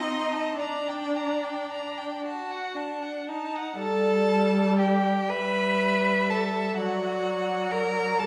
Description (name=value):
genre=classical, slow romantic movement for string quartet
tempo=36-43 BPM (dotted quarters)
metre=6/8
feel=rubato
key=unclear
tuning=A4 = 440 Hz
part: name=dark violin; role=melody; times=0.0-8.3 s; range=D5 to C6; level=-36 LUFS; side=equal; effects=none
part: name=rich violin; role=second line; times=0.0-8.3 s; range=D5 to B5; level=-34 LUFS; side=equal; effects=none
part: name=rich viola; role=accompaniment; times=0.0-8.3 s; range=F#3 to F#4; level=-31 LUFS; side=equal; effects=none
part: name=clear cello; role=bass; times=0.0-8.3 s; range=D4 to B4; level=-30 LUFS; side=equal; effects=none
room=wet recital hall reverb, RT60 1.5 s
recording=recorded in a church or concert hall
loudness=-27 LUFS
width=mono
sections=0.0-8.3 A section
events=none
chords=0.0 Adim/C; 0.6 Gm/D; 2.2 D; 3.8 G5; 5.3 A5/G; 6.8 D/F#